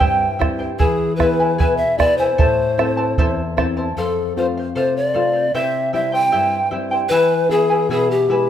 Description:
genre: andean folk, Andean ensemble.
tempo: 76 BPM.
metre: 2/4.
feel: straight.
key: unclear.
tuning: A4 = 440 Hz.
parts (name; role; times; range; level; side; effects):
polished pan flute; melody; 0.0-8.5 s; G4 to G5; -18 LUFS; left 1 dB; none.
charango; accompaniment; 0.0-8.5 s; E4 to A5; -22 LUFS; right 1 dB; none.
nylon-string guitar; accompaniment; 0.0-8.5 s; E2 to A4; -23 LUFS; left 3 dB; none.
bombo; percussion; 0.0-3.8 s; none; -20 LUFS; right 3 dB; none.
room: light reverb.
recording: minimal, uncompressed stereo recording.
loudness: -15 LUFS.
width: side -10 dB against mid.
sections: 0.0-4.0 A section; 4.0-8.5 A section.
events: none.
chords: 0.0 C; 0.8 E; 2.4 Am; 4.0 F; 5.5 C; 7.1 E.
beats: 0.00 | 0.79 1.58 | 2.38 3.17 | 3.96 4.75 | 5.54 6.33 | 7.11 7.90.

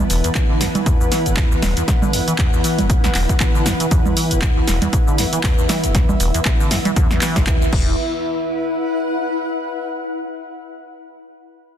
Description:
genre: acid house.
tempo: 118 BPM.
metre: 4/4.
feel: swing 56% on 16ths.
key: unclear.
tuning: A4 = 436 Hz.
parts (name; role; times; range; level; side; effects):
dark analog pad; sustained chords; 0.0-8.0 s; E3 to F#5; -26 LUFS; equal; chorus, sidechain pumping.
acid bass, saw; riff; 0.0-8.0 s; E1 to E3; -22 LUFS; equal; analog chorus, sidechain pumping, digital delay.
granular cloud pad; texture; 0.0-10.0 s; E4 to A5; -24 LUFS; left 1 dB; built-in reverb, sidechain pumping.
punchy analog drum machine; drums; 0.1-7.8 s; congas, crash cymbal, handclaps, hi-hat, shaker, snare drum; -22 LUFS; right 2 dB; none.
electronic kick drum; drums; 0.4-7.8 s; none; -18 LUFS; equal; none.
saturated sub bass; bass; 7.7-8.0 s; E1; -25 LUFS; equal; none.
room: light reverb.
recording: dense, heavily limited modern master.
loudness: -15 LUFS.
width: side -10 dB against mid.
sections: 0.0-8.0 A section; 8.0-10.0 B section.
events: filter sweep on acid bass 0.0-8.0.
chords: 0.0 E5.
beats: 0.35 0.86 1.37 | 1.88 2.39 2.90 3.40 | 3.91 4.42 4.93 5.44 | 5.95 6.46 6.96 7.47 | 7.98 8.49 9.00 9.51.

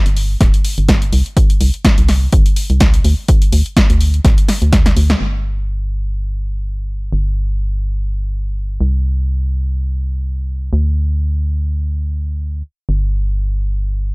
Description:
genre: piano house.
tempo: 125 BPM.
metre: 4/4.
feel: swing 55% on 16ths.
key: unclear.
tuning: A4 = 439 Hz.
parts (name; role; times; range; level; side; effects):
organ-like FM bass; bass; 0.1-14.1 s; D1 to D2; -16 LUFS; equal; sidechain pumping.
house drum kit; drums; 0.1-5.2 s; hi-hat, snare drum; -18 LUFS; equal; low-pass filter on hats, low-pass filter on snare.
electronic kick drum; drums; 0.4-4.8 s; none; -12 LUFS; equal; none.
room: little or no reverb.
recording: dry, gritty hardware recording.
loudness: -13 LUFS.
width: side -29 dB against mid.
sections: 0.0-5.2 A section; 5.2-14.1 B section.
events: drum fill 4.5-5.2; band accent 5.1.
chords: none.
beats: 0.41 0.89 | 1.37 1.85 2.33 2.81 | 3.29 3.77 4.25 4.73 | 5.21 5.69 6.17 6.65 | 7.13 7.61 8.09 8.57 | 9.05 9.53 10.01 10.49 | 10.97 11.45 11.93 12.41 | 12.89 13.37 13.85.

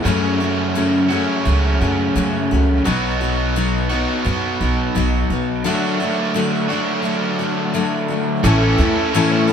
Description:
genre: rock.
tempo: 86 BPM.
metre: 4/4.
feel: straight.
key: unclear.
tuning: A4 = 441 Hz.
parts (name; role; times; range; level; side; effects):
picked steel-string acoustic guitar; accompaniment; 0.0-9.5 s; F#2 to A4; -20 LUFS; left 4 dB; none.
raw garage guitar; riff; 0.0-9.5 s; F#2 to A4; -19 LUFS; right 2 dB; overdrive.
upright bass; bass; 0.0-9.1 s; A1 to F#2; -20 LUFS; right 1 dB; none.
tonewheel organ; sustained chords; 8.4-9.5 s; A4 to C#6; -29 LUFS; right 2 dB; none.
room: moderate small room reverb, RT60 0.5 s.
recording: band playing live in one room.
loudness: -16 LUFS.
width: side -8 dB against mid.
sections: 0.0-8.4 A section; 8.4-9.5 B section.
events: none.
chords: 0.0 F#m; 2.9 B; 5.7 D; 8.4 A.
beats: | 0.05 0.75 1.45 2.15 | 2.85 3.55 4.25 4.95 | 5.65 6.35 7.05 7.74 | 8.44 9.13.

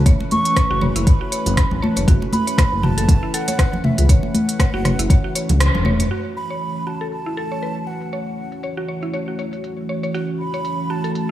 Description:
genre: afro house.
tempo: 119 BPM.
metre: 4/4.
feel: swing 56% on 16ths.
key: F# minor.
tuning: A4 = 440 Hz.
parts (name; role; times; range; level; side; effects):
mellow hollow concert flute; melody; 0.0-11.3 s; E5 to C#6; -26 LUFS; right 2 dB; tape echo.
warm analog pad; sustained chords; 0.0-11.3 s; E3 to B4; -26 LUFS; left 1 dB; chorus, sidechain pumping.
smooth synth bass; bass; 0.0-6.1 s; E1 to C#2; -19 LUFS; equal; sidechain pumping.
mallet-like synth pluck; arpeggios; 0.1-11.1 s; E4 to C#5; -28 LUFS; equal; chorus, sidechain pumping, tape echo.
afro-pop drum kit; drums; 0.1-11.3 s; crash cymbal, hi-hat, rim click, toms; -23 LUFS; equal; low-pass filter on hats, low-pass filter on toms, low-pass filter on snare, low-pass filter on cymbals.
electronic kick drum; drums; 0.1-5.2 s; none; -15 LUFS; equal; none.
congas; percussion; 0.1-6.1 s; none; -24 LUFS; equal; none.
room: moderate plate reverb, RT60 2.0 s.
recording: dreamy mix soaked in reverb.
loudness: -17 LUFS.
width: side -13 dB against mid.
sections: 0.0-6.1 A section; 6.1-11.3 B section.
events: kick drops out 5.6-6.1; band accent 5.6; drum fill 5.7-6.1; filter sweep on drum 6.1-11.3.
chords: 0.0 F#m7.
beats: | 0.06 0.56 1.07 1.57 | 2.08 2.58 3.08 3.59 | 4.09 4.60 5.10 5.61 | 6.11 6.62 7.12 7.62 | 8.13 8.63 9.14 9.64 | 10.14 10.65 11.15.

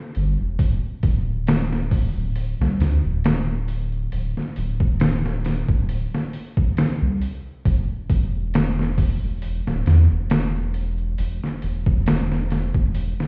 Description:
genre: trip hop.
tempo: 68 BPM.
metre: 4/4.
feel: swing 55% on 16ths.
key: unclear.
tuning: A4 = 440 Hz.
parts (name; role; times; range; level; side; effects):
trip hop sampler-style drum kit; drums; 0.1-13.3 s; hi-hat, kick drum, snare drum; -21 LUFS; equal; small room ambience.
soft dub sub bass; bass; 0.2-13.1 s; D1 to E2; -21 LUFS; equal; none.
room: digital ambience.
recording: heard muffled through a wall, stone room reverb, vinyl crackle, EQ, nothing above 7.8 kHz.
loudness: -19 LUFS.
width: side -35 dB against mid.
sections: 0.0-13.3 A section.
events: none.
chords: none.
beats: | 0.59 1.47 2.36 3.24 | 4.12 5.00 5.88 6.77 | 7.65 8.53 9.41 10.30 | 11.18 12.06 12.94.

